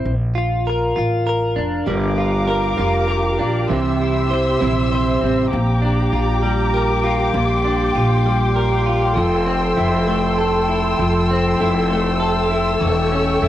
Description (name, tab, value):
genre	pop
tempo	66 BPM (dotted quarters)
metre	6/8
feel	straight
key	unclear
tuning	A4 = 440 Hz
part	direct-recorded clean electric guitar	accompaniment	0.0-13.5 s	Bb2 to C5	-20 LUFS	left 1 dB	double-tracked left and right, cassette tape
part	upright bass	bass	0.0-13.5 s	E1 to C2	-22 LUFS	equal	none
part	muted studio string section	sustained chords	1.9-13.5 s	G4 to E6	-20 LUFS	equal	cassette tape
part	fingerpicked steel-string acoustic guitar	arpeggios	1.9-5.5 s	C3 to C5	-22 LUFS	right 6 dB	cassette tape, tape echo
room	light reverb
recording	home recording on cassette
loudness	-16 LUFS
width	side -12 dB against mid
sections	0.0-5.5 A section; 5.5-13.5 B section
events	none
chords	0.1 Bb; 1.9 Gm7; 3.7 C; 5.5 Bb6; 9.2 Fmaj7; 12.8 A7/E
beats	| 0.05 0.96 | 1.88 2.79 | 3.70 4.61 | 5.52 6.44 | 7.35 8.26 | 9.17 10.08 | 10.99 11.90 | 12.82